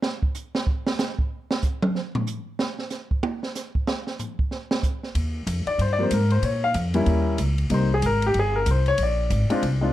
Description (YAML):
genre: jazz piano trio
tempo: 187 BPM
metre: 4/4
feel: swing 62% on 8ths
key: Eb major from 5.2 s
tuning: A4 = 441 Hz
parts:
  - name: open jazz drum kit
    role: drums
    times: 0.0-9.7 s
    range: hi-hat, kick drum, ride cymbal, snare drum, toms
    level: -27 LUFS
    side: right 2 dB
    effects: none
  - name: upright bass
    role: bass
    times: 5.1-9.9 s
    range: G1 to Bb2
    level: -22 LUFS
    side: equal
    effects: none
  - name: warm grand piano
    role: melody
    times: 5.7-9.9 s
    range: F3 to F5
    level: -23 LUFS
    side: left 2 dB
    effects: none
room: little or no reverb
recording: dark, warm production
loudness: -22 LUFS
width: side -14 dB against mid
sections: 0.0-5.2 A section; 5.2-9.9 A section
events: drum solo 0.0-5.2; grand piano solo 5.2-9.9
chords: 0.0 N.C.; 5.2 Eb6; 6.4 Bbm; 7.1 Eb7b9; 7.7 Abmaj7; 9.0 Bb7